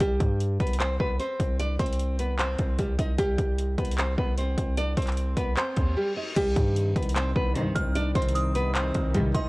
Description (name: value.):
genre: hip hop, trap.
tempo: 151 BPM.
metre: 4/4.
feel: half-time.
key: C harmonic minor.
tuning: A4 = 444 Hz.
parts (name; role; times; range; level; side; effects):
nylon-string guitar; melody; 0.0-9.5 s; G3 to Eb5; -29 LUFS; equal; low-pass filter, ping-pong delay.
distorted 808-style bass; bass; 0.0-9.5 s; C2 to G2; -27 LUFS; equal; distortion.
trap drum kit; drums; 0.0-9.4 s; crash cymbal, handclaps, hi-hat, kick drum; -28 LUFS; equal; none.
reverse cymbal; sound effects; 5.8-6.4 s; none; -39 LUFS; left 3 dB; none.
warm analog pad; sustained chords; 6.4-9.5 s; C3 to Eb4; -33 LUFS; equal; chorus.
dark symphonic string section; stabs; 7.6-9.5 s; C2 to Eb3; -32 LUFS; left 1 dB; ping-pong delay.
delicate synth tine bell; second line; 7.8-9.5 s; C6 to F6; -34 LUFS; right 2 dB; chorus, ping-pong delay.
room: digital ambience.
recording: worn, warbling old tape, cassette tape, warbly pitch drift.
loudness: -24 LUFS.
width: side -22 dB against mid.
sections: 0.0-6.4 A section; 6.4-9.5 B section.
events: reverse cymbal 5.8-6.4; break 6.0-6.4.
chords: 0.0 C5; 6.4 Cm.